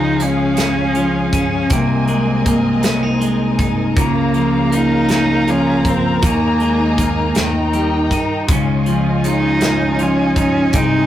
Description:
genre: six-eight pop ballad.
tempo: 53 BPM (dotted quarters).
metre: 6/8.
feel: straight.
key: unclear.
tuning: A4 = 440 Hz.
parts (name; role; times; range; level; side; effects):
warm cello; melody; 0.0-11.1 s; Ab3 to Eb4; -18 LUFS; equal; none.
twelve-string electric guitar; accompaniment; 0.0-11.1 s; C3 to Eb4; -18 LUFS; equal; none.
warm studio string section; sustained chords; 0.0-11.1 s; Db3 to Bb5; -22 LUFS; left 1 dB; none.
fingered electric bass; bass; 0.0-11.1 s; C2 to Eb2; -22 LUFS; equal; none.
modern studio drum kit; drums; 0.2-10.9 s; hi-hat, kick drum, snare drum; -20 LUFS; equal; none.
room: wet booth ambience, RT60 0.2 s.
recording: rough rehearsal-room recording, warm saturation.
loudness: -13 LUFS.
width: side -12 dB against mid.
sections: 0.0-11.1 A section.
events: none.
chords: 0.0 Db; 1.7 Abadd9/C; 4.0 Bbm/Db; 6.2 Ebsus4; 7.4 Eb; 8.5 Dbadd9.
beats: 0.58 | 1.71 2.84 | 3.97 5.10 | 6.23 7.36 | 8.49 9.61 | 10.74.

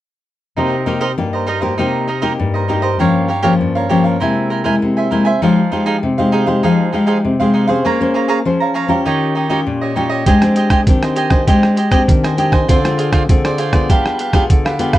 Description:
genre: samba and choro.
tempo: 99 BPM.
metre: 4/4.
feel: straight.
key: C minor.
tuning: A4 = 440 Hz.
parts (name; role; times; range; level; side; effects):
cavaquinho; accompaniment; 0.6-15.0 s; D4 to Bb5; -18 LUFS; right 4 dB; none.
nylon-string guitar; accompaniment; 0.6-15.0 s; G2 to C5; -15 LUFS; left 2 dB; none.
lo-fi sampler-style drum kit; drums; 10.3-15.0 s; hi-hat, kick drum, rim click; -14 LUFS; right 1 dB; none.
room: moderate studio reverb, RT60 0.7 s.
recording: worn, warbling old tape, cassette tape, warbly pitch drift.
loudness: -12 LUFS.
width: side -14 dB against mid.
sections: 0.6-15.0 A section.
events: none.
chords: 0.6 Cm7; 3.0 Gm7b5; 4.2 Caug7; 5.4 Fm9; 7.8 Bbm9; 9.1 Eb9; 10.3 Abmaj7#11; 12.7 Dm7b5; 13.9 G7b9.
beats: | 0.57 1.18 1.78 2.39 | 3.00 3.60 4.21 4.82 | 5.42 6.03 6.63 7.24 | 7.85 8.45 9.06 9.66 | 10.27 10.87 11.48 12.08 | 12.69 13.29 13.89 14.50.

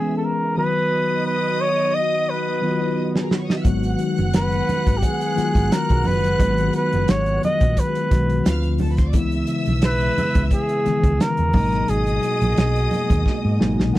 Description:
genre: lush 1970s-style soul.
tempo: 88 BPM.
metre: 4/4.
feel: swing 54% on 16ths.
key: G# minor.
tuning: A4 = 440 Hz.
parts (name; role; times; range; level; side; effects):
warm flugelhorn; melody; 0.0-13.9 s; G4 to D#5; -22 LUFS; right 1 dB; none.
rich studio string section; second line; 0.0-14.0 s; G#4 to F#6; -32 LUFS; equal; none.
mellow tine electric piano; accompaniment; 0.0-14.0 s; B2 to G#5; -24 LUFS; left 2 dB; slow stereo tremolo.
soft string machine; sustained chords; 0.0-14.0 s; B2 to E5; -31 LUFS; equal; ensemble chorus.
warm soul drum kit; drums; 3.2-14.0 s; hi-hat, kick drum, snare drum; -20 LUFS; equal; none.
hollow-body short-scale fingered electric bass; bass; 3.7-14.0 s; F#1 to G#2; -22 LUFS; equal; none.
congas; percussion; 4.2-14.0 s; none; -29 LUFS; right 2 dB; none.
room: little or no reverb.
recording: none.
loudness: -17 LUFS.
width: side -16 dB against mid.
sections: 0.0-14.0 A section.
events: drum fill 2.3-3.7, 13.3-14.0; tine electric piano fill 13.3-14.0.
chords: 0.0 C#m7; 0.6 B; 3.7 G#m7; 8.5 Dm7; 9.1 C#m7; 11.5 G#m9.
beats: 0.22 | 0.91 1.59 2.28 2.97 | 3.65 4.34 5.03 5.71 | 6.40 7.08 7.77 8.46 | 9.14 9.83 10.51 11.20 | 11.88 12.57 13.25 13.94.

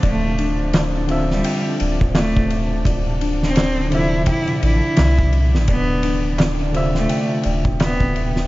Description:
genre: trip hop.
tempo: 85 BPM.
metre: 4/4.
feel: swing 59% on 16ths.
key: D minor.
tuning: A4 = 441 Hz.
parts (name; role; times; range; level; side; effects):
overdriven reed electric piano; accompaniment; 0.0-8.5 s; C3 to E5; -25 LUFS; equal; tremolo, vintage 12-bit sampler grit.
deep dark ambient pad; sustained chords; 0.0-8.5 s; F3 to G5; -30 LUFS; equal; chorus, built-in reverb, vintage 12-bit sampler grit.
worn celesta; arpeggios; 0.0-8.5 s; D4 to G5; -28 LUFS; left 3 dB; vintage 12-bit sampler grit, tape echo.
soft dub sub bass; bass; 0.0-8.5 s; D1 to C2; -21 LUFS; equal; none.
oversized low-tuned drum kit; drums; 0.0-8.5 s; kick drum, ride cymbal, snare drum; -21 LUFS; equal; none.
clear cello; melody; 0.1-8.3 s; G3 to E4; -24 LUFS; equal; none.
darbuka; percussion; 0.7-8.0 s; none; -29 LUFS; right 2 dB; none.
room: small room ambience.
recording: vinyl crackle, nothing above 7.5 kHz.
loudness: -16 LUFS.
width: side -18 dB against mid.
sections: 0.0-8.5 A section.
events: none.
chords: 0.0 Dm9.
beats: | 0.03 0.74 1.44 2.15 | 2.85 3.56 4.27 4.97 | 5.68 6.38 7.09 7.80.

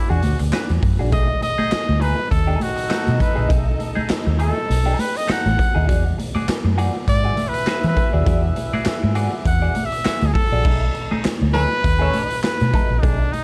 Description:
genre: funk.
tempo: 101 BPM.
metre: 4/4.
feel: swing 56% on 16ths.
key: unclear.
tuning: A4 = 440 Hz.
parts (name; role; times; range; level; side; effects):
clear trumpet; melody; 0.0-13.4 s; D4 to F#5; -26 LUFS; equal; none.
warm horn section; second line; 0.0-12.4 s; C#4 to E5; -32 LUFS; equal; none.
clean electric guitar; accompaniment; 0.1-13.4 s; A3 to E5; -31 LUFS; equal; wah, spring reverb.
vintage muted fingered electric bass; bass; 0.1-13.3 s; A1 to E3; -22 LUFS; equal; none.
raw garage drum kit; drums; 0.2-13.4 s; crash cymbal, handclaps, hi-hat, kick drum, snare drum; -24 LUFS; equal; none.
congas; percussion; 0.2-13.4 s; none; -30 LUFS; equal; none.
room: little or no reverb.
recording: dark, warm production.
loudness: -19 LUFS.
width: mono.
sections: 0.0-10.7 A section; 10.7-13.4 B section.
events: trumpet solo 0.0-10.7.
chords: 0.0 E9; 1.1 B6; 5.9 E9; 10.7 B13.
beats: 0.53 | 1.12 1.72 2.32 2.91 | 3.51 4.10 4.70 5.29 | 5.89 6.48 7.08 7.67 | 8.27 8.87 9.46 10.06 | 10.65 11.25 11.84 12.44 | 13.04.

